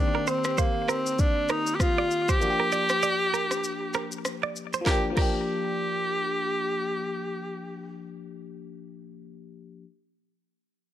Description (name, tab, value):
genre	afrobeats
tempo	98 BPM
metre	4/4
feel	swing 58% on 16ths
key	G minor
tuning	A4 = 440 Hz
part	breathy tenor saxophone	melody	0.0-8.1 s	Bb3 to G4	-27 LUFS	equal	ping-pong delay
part	barking FM electric piano	accompaniment	0.0-9.8 s	Eb3 to G4	-33 LUFS	left 3 dB	chorus
part	direct-recorded clean electric guitar	riff	0.1-5.3 s	Bb4 to D5	-32 LUFS	right 8 dB	ping-pong delay
part	afro-pop drum kit	drums	0.3-5.4 s	crash cymbal, kick drum, rim click, shaker, snare drum	-27 LUFS	equal	none
room	light reverb, digital ambience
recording	none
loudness	-24 LUFS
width	side -12 dB against mid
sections	0.0-4.9 A section; 4.9-7.3 B section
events	none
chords	0.0 Cm7; 2.4 Bb6; 4.9 Gm7